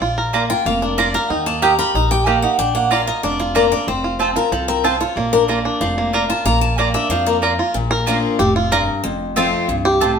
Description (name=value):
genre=bluegrass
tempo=186 BPM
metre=4/4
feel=straight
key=Bb major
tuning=A4 = 437 Hz
part: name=bluegrass banjo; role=melody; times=0.0-10.2 s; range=F3 to Bb4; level=-20 LUFS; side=right 2 dB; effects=none
part: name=picked steel-string acoustic guitar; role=accompaniment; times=0.0-10.2 s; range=F2 to Cb6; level=-19 LUFS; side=left 4 dB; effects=none
part: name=upright bass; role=bass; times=0.0-10.2 s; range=F1 to F2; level=-24 LUFS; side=equal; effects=none
part: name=mandolin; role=stabs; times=0.3-10.1 s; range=Bb3 to Bb5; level=-20 LUFS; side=right 5 dB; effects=none
room=wet stone room reverb, RT60 1.1 s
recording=band playing live in one room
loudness=-15 LUFS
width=side -6 dB against mid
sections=0.0-7.8 A section; 7.8-10.2 A section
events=steel-string acoustic guitar solo 0.0-7.8; five-string banjo solo 7.8-10.2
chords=0.0 Bb; 1.3 Eb; 2.6 Bb; 3.9 F; 5.2 Bb; 9.0 F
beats=| 0.01 0.34 0.66 0.98 | 1.30 1.62 1.95 2.27 | 2.59 2.91 3.24 3.56 | 3.88 4.20 4.53 4.85 | 5.17 5.49 5.81 6.14 | 6.46 6.78 7.11 7.43 | 7.75 8.07 8.40 8.72 | 9.04 9.37 9.69 10.01